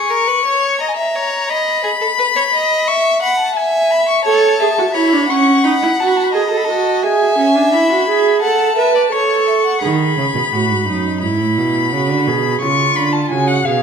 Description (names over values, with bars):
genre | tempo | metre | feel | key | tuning
classical, baroque-style fugue for string quartet | 86 BPM | 4/4 | straight | unclear | A4 = 440 Hz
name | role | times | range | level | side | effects
rich violin | melody | 0.0-13.8 s | E#5 to C#6 | -17 LUFS | left 6 dB | none
rich violin | second line | 0.0-9.8 s | G#4 to F#5 | -18 LUFS | equal | none
rich viola | accompaniment | 4.3-13.8 s | C#4 to B4 | -16 LUFS | right 5 dB | none
warm cello | bass | 9.8-13.8 s | F#2 to D#3 | -18 LUFS | right 4 dB | none
room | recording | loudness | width
wet recital hall reverb, RT60 1.4 s | none | -12 LUFS | side -6 dB against mid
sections
0.0-9.8 A section; 9.8-13.8 B section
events
none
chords
0.1 A#m; 1.5 B; 2.9 E; 4.3 A; 5.6 B7; 7.0 E; 8.4 A; 9.8 B7; 11.2 E/G#; 12.6 C#7